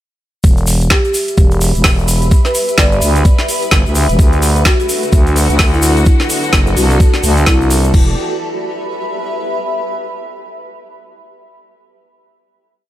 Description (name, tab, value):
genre	bass house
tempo	128 BPM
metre	4/4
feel	swing 60% on 16ths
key	E minor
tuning	A4 = 440 Hz
part	growling FM bass	bass	0.4-8.2 s	E1 to D2	-13 LUFS	equal	tube saturation, sidechain pumping
part	electronic kick drum	drums	0.4-8.1 s	none	-11 LUFS	equal	overdrive, studio reverb
part	garage drum kit	drums	0.4-8.1 s	crash cymbal, hi-hat, snare drum	-17 LUFS	equal	overdrive, studio reverb
part	egg shaker	percussion	0.4-7.9 s	none	-24 LUFS	left 2 dB	none
part	granular cloud pad	texture	1.3-9.8 s	F#4 to B5	-21 LUFS	equal	built-in reverb, sidechain pumping
part	marimba with soft mallets	melody	0.9-7.8 s	E4 to D5	-20 LUFS	equal	tape echo
part	dark chamber string section	sustained chords	4.2-8.2 s	D3 to G4	-22 LUFS	left 2 dB	sidechain pumping
room	studio reverb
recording	none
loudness	-10 LUFS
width	side -13 dB against mid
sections	0.4-7.9 drop; 7.9-9.8 final chord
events	drop 0.4-7.9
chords	0.4 Em; 4.2 D; 7.9 Em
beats	| 0.44 0.91 1.38 1.84 | 2.31 2.78 3.25 3.72 | 4.19 4.66 5.13 5.59 | 6.06 6.53 7.00 7.47 | 7.94 8.41 8.88 9.35